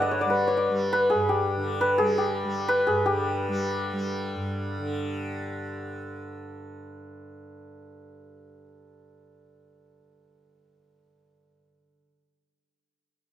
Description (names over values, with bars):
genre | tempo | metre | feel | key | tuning
indian classical, Hindustani | 170 BPM | 3/4 | straight | G major | A4 = 440 Hz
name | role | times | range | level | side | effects
santur | melody | 0.0-6.2 s | G4 to F#5 | -24 LUFS | left 1 dB | none
tanpura | drone | 0.0-11.9 s | G2 to G3 | -32 LUFS | right 1 dB | none
room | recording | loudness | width
light reverb | close, detailed microphones | -24 LUFS | side -11 dB against mid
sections
0.0-3.0 A section; 3.0-5.1 B section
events
speeding up 0.0-5.1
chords
none